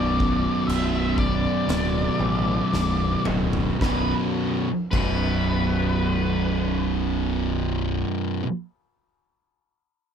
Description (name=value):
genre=stoner and doom metal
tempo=54-63 BPM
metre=4/4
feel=straight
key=B minor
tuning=A4 = 440 Hz
part: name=octave-fuzz lead guitar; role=melody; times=0.0-8.0 s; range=B4 to E5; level=-29 LUFS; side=left 2 dB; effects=wah, distortion, slapback echo
part: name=cranked stack guitar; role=riff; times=0.0-8.5 s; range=B1 to B2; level=-30 LUFS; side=equal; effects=overdrive
part: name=thick fuzz guitar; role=riff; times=0.0-8.5 s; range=B1 to B2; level=-28 LUFS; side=left 10 dB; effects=distortion
part: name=thick fuzz guitar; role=riff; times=0.0-8.5 s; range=B1 to B2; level=-27 LUFS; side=right 9 dB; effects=distortion
part: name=growling picked electric bass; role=bass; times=0.0-8.0 s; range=B0 to A1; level=-27 LUFS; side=equal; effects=overdrive
part: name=oversized low-tuned drum kit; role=drums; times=0.2-5.2 s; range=crash cymbal, kick drum, snare drum, toms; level=-30 LUFS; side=equal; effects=none
room=little or no reverb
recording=none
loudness=-21 LUFS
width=side -8 dB against mid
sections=0.0-3.8 A section; 3.8-8.3 B section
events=slowing down 0.0-3.8; drum fill 2.7-3.8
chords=0.0 Bm; 3.8 B5